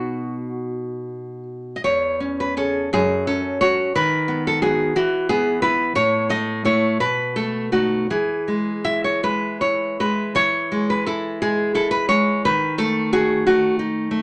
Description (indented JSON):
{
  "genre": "romantic piece for solo classical guitar",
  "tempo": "52-61 BPM (dotted quarters)",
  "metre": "6/8",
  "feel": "rubato",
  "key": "E major",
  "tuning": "A4 = 441 Hz",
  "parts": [
    { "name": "nylon-string guitar", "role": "solo", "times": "0.0-14.2 s", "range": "E2 to E5", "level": "-21 LUFS", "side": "equal", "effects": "none" }
  ],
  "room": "wet small room ambience, RT60 0.5 s",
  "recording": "none",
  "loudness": "-21 LUFS",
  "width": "mono",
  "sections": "0.0-10.4 A section; 10.4-14.2 A section",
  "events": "none",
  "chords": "0.0 B; 1.8 C#m/E; 2.9 F#5; 3.9 B/D#; 5.0 E5; 6.0 A5; 7.0 B7; 8.1 E; 12.4 D#dim",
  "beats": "0.73 | 1.83 2.92 | 3.94 4.96 | 5.95 7.00 | 8.10 9.23 | 10.36 11.41 | 12.44 13.46"
}